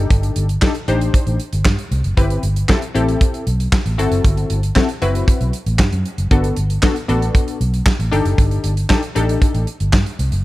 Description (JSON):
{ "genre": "early-eighties boogie funk", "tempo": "116 BPM", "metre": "4/4", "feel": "straight", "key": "unclear", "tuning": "A4 = 444 Hz", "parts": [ { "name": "funky polysynth comp", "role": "accompaniment", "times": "0.0-9.7 s", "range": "B3 to C5", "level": "-21 LUFS", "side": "left 3 dB", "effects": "chorus" }, { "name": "vintage muted fingered electric bass", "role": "bass", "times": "0.0-10.4 s", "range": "F#1 to G2", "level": "-18 LUFS", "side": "equal", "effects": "none" }, { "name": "modern studio drum kit", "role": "drums", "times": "0.1-10.4 s", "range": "handclaps, hi-hat, kick drum, snare drum", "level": "-17 LUFS", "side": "equal", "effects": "none" } ], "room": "small room ambience", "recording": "none", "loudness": "-15 LUFS", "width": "side -17 dB against mid", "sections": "0.0-10.4 A section", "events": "none", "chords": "0.0 Cm6; 2.2 Am9/G; 4.0 Am13/F#; 6.3 Gmaj7; 8.1 Cm6 (rootless)" }